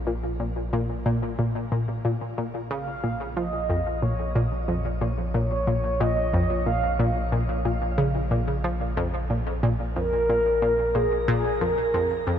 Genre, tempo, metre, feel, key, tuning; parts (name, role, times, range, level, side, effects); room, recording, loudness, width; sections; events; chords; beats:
ambient, sequencer-driven space music; 91 BPM; 4/4; straight; Bb minor; A4 = 440 Hz
round analog bass; bass; 0.0-12.4 s; Bb1; -30 LUFS; equal
analog pluck; riff; 0.1-12.4 s; F2 to F3; -26 LUFS; left 1 dB; chorus, shimmer reverb, tape echo
mellow horn-like synth lead; melody; 2.7-12.3 s; Ab4 to F5; -26 LUFS; right 1 dB; lush chorus, shimmer reverb, tape echo
wet huge ambient reverb, RT60 7.2 s; -23 LUFS; side -9 dB against mid
0.0-12.4 A section
filter sweep on synth arpeggio sound 0.0-12.4
0.0 Bb5
0.07 0.73 1.39 | 2.05 2.71 3.37 4.03 | 4.69 5.35 6.00 6.66 | 7.32 7.98 8.64 9.30 | 9.96 10.62 11.28 11.94